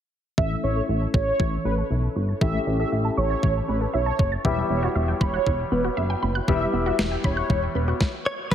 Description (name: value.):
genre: synth-pop.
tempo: 118 BPM.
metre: 4/4.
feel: straight.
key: A mixolydian.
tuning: A4 = 439 Hz.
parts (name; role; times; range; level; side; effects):
mellow synth brass; second line; 0.4-7.8 s; B4 to E5; -27 LUFS; right 2 dB; chorus, digital delay.
clear grand piano; accompaniment; 0.4-8.0 s; G3 to A4; -30 LUFS; left 4 dB; low-pass filter.
wide unison pluck; arpeggios; 0.4-8.5 s; E3 to A6; -30 LUFS; right 1 dB; phaser, low-pass filter, digital delay.
chorused synth bass; bass; 0.4-8.5 s; E1 to B1; -25 LUFS; equal; none.
clean 12-bit digital drum machine; drums; 0.4-8.5 s; crash cymbal, kick drum, snare drum; -23 LUFS; equal; none.
direct-recorded clean electric guitar; melody; 8.3-8.5 s; B4 to C#5; -24 LUFS; equal; none.
string machine, full ensemble; sustained chords; 8.5 s; none; barely audible; none; none.
room: moderate concert hall reverb, RT60 2.1 s.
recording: heavily compressed radio sound, multiband compression.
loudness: -21 LUFS.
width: side -9 dB against mid.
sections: 0.4-8.5 A section.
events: filter sweep 0.4-8.5; stop 8.0-8.5.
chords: 0.4 A; 4.4 Emadd9.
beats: | 0.38 0.89 1.40 1.90 | 2.41 2.92 3.43 3.94 | 4.45 4.96 5.46 5.97 | 6.48 6.99 7.50 8.01 | 8.52.